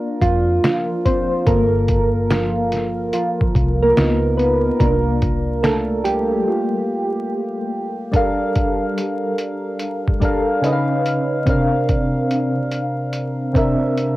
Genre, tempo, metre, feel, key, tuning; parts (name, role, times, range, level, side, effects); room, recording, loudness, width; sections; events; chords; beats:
lo-fi hip hop; 72 BPM; 4/4; swing 65% on 16ths; A4 = 441 Hz
soft electric-piano-like synth keys; accompaniment; 0.0-14.2 s; C3 to F5; -18 LUFS; equal; chorus, phaser, low-pass filter, cassette tape
vintage muted fingered electric bass; bass; 0.2-6.4 s; G1 to F2; -21 LUFS; equal
lo-fi sampler-style drum kit; drums; 0.2-14.2 s; finger snaps, hi-hat, kick drum, snare drum; -20 LUFS; equal; cassette tape
moderate booth ambience, RT60 0.2 s; home recording on cassette, vinyl crackle; -16 LUFS; side -17 dB against mid
0.0-8.1 A section; 8.1-14.2 B section
synth keys solo 0.0-8.1; break 6.5-8.1
0.0 C7sus4; 1.5 Gm7; 4.0 C#9; 4.8 C7sus4; 6.5 Gm9; 8.1 Gm7; 10.6 C#9; 11.5 C7sus4
0.64 | 1.47 2.30 3.13 3.97 | 4.80 5.63 6.47 7.30 | 8.13 8.97 9.80 10.63 | 11.47 12.30 13.13 13.97